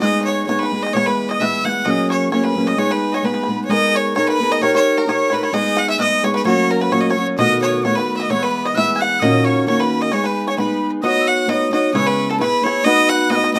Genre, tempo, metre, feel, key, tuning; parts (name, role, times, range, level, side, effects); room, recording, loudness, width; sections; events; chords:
celtic folk, Celtic polka; 131 BPM; 2/4; swing 53% on 8ths; G# minor; A4 = 435 Hz
bright fiddle; melody; 0.0-13.6 s; A4 to F#5; -22 LUFS; equal
bluegrass banjo; second line; 0.0-13.6 s; A4 to G#5; -28 LUFS; equal
breathy mid whistle; second line; 0.0-13.6 s; A5 to G#6; -28 LUFS; equal
fingerpicked steel-string acoustic guitar; accompaniment; 0.0-13.6 s; D#2 to C#5; -20 LUFS; equal
moderate studio reverb, RT60 0.5 s; close, detailed microphones; -17 LUFS; mono
0.0-3.7 A section; 3.7-11.0 A section; 11.0-13.6 B section
0.0 G#m; 0.9 E; 1.9 F#add9; 2.8 G#m; 3.7 G#madd9; 4.6 D#7; 5.5 G#m; 6.5 F#; 7.4 B7; 8.3 E; 9.2 D#m7; 10.1 G#m; 11.0 Badd9; 11.9 C#m7; 12.9 B